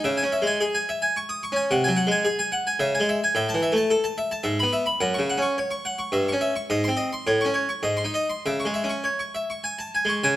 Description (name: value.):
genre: classical, baroque-style suite movement for harpsichord.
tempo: 98-113 BPM.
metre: 3/4.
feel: rubato.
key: C# minor from 3.3 s.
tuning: A4 = 439 Hz.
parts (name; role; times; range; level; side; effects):
harpsichord; solo; 0.0-10.4 s; F#2 to D#6; -22 LUFS; equal; none.
room: moderate recital hall reverb, RT60 1.6 s.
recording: close, detailed microphones.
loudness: -22 LUFS.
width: side -14 dB against mid.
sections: 0.0-10.3 A section.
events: none.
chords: 0.1 C#m; 1.7 G#7/B#; 2.8 C#m; 3.3 A5; 4.5 E/G#; 5.0 F#5; 6.1 C#dim/G; 6.7 G#; 7.3 A; 7.9 G#; 8.5 C#m.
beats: | 0.06 0.62 1.17 | 1.71 2.25 2.79 | 3.35 3.90 4.46 | 5.01 5.57 6.14 | 6.71 7.28 7.86 | 8.46 9.07 9.67 | 10.27.